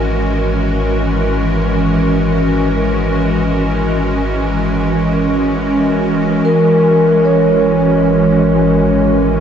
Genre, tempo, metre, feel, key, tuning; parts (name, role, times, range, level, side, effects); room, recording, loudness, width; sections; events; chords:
ambient; free time; A4 = 440 Hz
evolving wavetable pad; sustained chords; 0.0-9.4 s; E3 to A#4; -13 LUFS; equal; ensemble chorus, built-in reverb
warm sub bass; bass; 0.0-9.4 s; G#1; -21 LUFS; equal
vibraphone with soft mallets; arpeggios; 6.4-9.4 s; A#4 to C#5; -13 LUFS; right 1 dB; ping-pong delay
wet huge ambient reverb, RT60 7.8 s; dark, warm production, nothing above 7.9 kHz; -11 LUFS; side -8 dB against mid
0.0-6.5 A section; 6.5-9.4 B section
0.0 F#9/G#